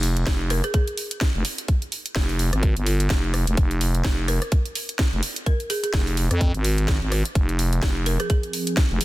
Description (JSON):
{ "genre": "bass house", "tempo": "127 BPM", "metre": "4/4", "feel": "swing 58% on 16ths", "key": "F minor", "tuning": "A4 = 439 Hz", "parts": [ { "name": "growling FM bass", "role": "bass", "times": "0.0-9.0 s", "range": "F1 to F2", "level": "-22 LUFS", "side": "equal", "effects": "tube saturation, sidechain pumping" }, { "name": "garage drum kit", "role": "drums", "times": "0.0-9.0 s", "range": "hi-hat, rim click, snare drum", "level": "-28 LUFS", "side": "right 1 dB", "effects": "studio reverb" }, { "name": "electronic kick drum", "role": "drums", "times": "0.3-8.9 s", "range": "none", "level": "-21 LUFS", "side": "equal", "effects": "studio reverb" }, { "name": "folk marimba with hard mallets", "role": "melody", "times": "0.5-0.8, 4.3-8.4 s", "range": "Ab4 to Bb4", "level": "-31 LUFS", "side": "equal", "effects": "ping-pong delay" }, { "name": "sweeping resonant pad", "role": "sustained chords", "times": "7.4-9.0 s", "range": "F3 to Ab4", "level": "-31 LUFS", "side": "right 3 dB", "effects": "chorus, sidechain pumping" } ], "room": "digital ambience", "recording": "dense, heavily limited modern master", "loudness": "-20 LUFS", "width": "side -17 dB against mid", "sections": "0.0-9.0 A section", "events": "none", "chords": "0.0 Fm" }